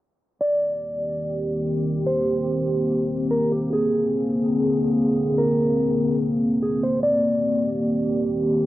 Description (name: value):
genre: hip hop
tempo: 145 BPM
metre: 4/4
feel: half-time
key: C minor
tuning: A4 = 440 Hz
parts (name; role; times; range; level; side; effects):
- mellow electric guitar; melody; 0.4-8.2 s; G4 to D5; -25 LUFS; equal; cassette tape, tape echo
- dark analog pad; sustained chords; 1.0-8.7 s; D3 to Ab4; -21 LUFS; equal; chorus
room: light reverb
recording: home recording on cassette, low-pass filter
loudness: -20 LUFS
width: side -15 dB against mid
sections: 0.4-8.7 A section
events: none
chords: 0.4 Cm7; 3.7 Bb9; 7.0 Cm7